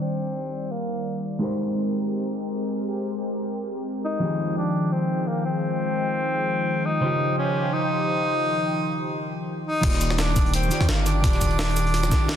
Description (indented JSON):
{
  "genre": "liquid drum and bass",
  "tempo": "171 BPM",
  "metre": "4/4",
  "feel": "swing 54% on 16ths",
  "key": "Eb major",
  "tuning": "A4 = 440 Hz",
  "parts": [
    { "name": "warm tenor saxophone", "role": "melody", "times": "0.0-1.2, 4.0-12.4 s", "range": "Bb3 to Eb4", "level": "-26 LUFS", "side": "left 1 dB", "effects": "digital delay" },
    { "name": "hollow-body jazz guitar", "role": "accompaniment", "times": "0.0-12.4 s", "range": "Db3 to F5", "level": "-28 LUFS", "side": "right 1 dB", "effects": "digital delay" },
    { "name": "lush unison pad", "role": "sustained chords", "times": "0.0-12.4 s", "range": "Eb3 to D6", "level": "-28 LUFS", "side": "equal", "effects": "chorus, vintage 12-bit sampler grit, sidechain pumping" },
    { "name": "long sustained 808-style bass", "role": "bass", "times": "9.8-12.1 s", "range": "Eb1 to Eb2", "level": "-24 LUFS", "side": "equal", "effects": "none" },
    { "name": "breakbeat sampler-style drum kit", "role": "drums", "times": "9.8-12.4 s", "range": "crash cymbal, hi-hat, shaker, snare drum", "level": "-28 LUFS", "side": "equal", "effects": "low-pass filter on hats, low-pass filter on perc, low-pass filter on snare, low-pass filter on cymbals, low-pass filter on room" },
    { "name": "crunchy breakbeat drum kit", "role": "drums", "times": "9.8-12.4 s", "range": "hi-hat, snare drum", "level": "-36 LUFS", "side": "left 1 dB", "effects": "none" },
    { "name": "electronic kick drum", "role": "drums", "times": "9.8-12.2 s", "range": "none", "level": "-22 LUFS", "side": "equal", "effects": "none" }
  ],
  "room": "light reverb, digital ambience",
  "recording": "dense, heavily limited modern master, low-pass filter, faint mains hum",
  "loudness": "-22 LUFS",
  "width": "side -9 dB against mid",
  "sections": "0.0-9.8 A section; 9.8-12.4 B section",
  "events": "filter sweep on analog synth pad 0.0-9.8; filter sweep 0.0-9.8; drop 9.8-12.4",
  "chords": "0.0 Ebmaj7; 1.4 Abmaj9; 4.2 Fm9; 7.0 Dbmaj9#11; 9.8 Ebmaj7"
}